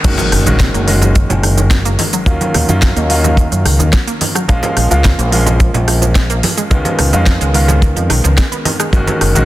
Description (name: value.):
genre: nu-disco, nu disco.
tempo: 108 BPM.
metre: 4/4.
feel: straight.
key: F# major.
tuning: A4 = 441 Hz.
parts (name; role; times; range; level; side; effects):
warm grand piano; accompaniment; 0.0-9.4 s; D#3 to F#4; -17 LUFS; equal; sidechain pumping, slapback echo.
wide unison pluck; arpeggios; 0.0-9.4 s; D#3 to B3; -21 LUFS; right 3 dB; sidechain pumping, tape echo.
fingered electric bass with an envelope filter; bass; 0.0-9.4 s; F#1 to F#2; -14 LUFS; equal; none.
house drum kit; drums; 0.0-9.4 s; crash cymbal, hi-hat, rim click, shaker, snare drum; -18 LUFS; equal; studio ambience.
kick drum; drums; 0.0-9.0 s; none; -12 LUFS; equal; studio ambience.
impact; sound effects; 0.0-2.3 s; none; -23 LUFS; equal; none.
congas; percussion; 0.2-9.2 s; none; -22 LUFS; right 1 dB; none.
room: little or no reverb.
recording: dense, heavily limited modern master.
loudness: -10 LUFS.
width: side -15 dB against mid.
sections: 0.0-9.4 A section.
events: band accent 0.0; drop 0.0-9.4; impact 0.0-2.3.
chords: 0.0 F#6; 2.3 D#m7; 4.5 A#m7; 6.7 C#9; 8.9 F#6.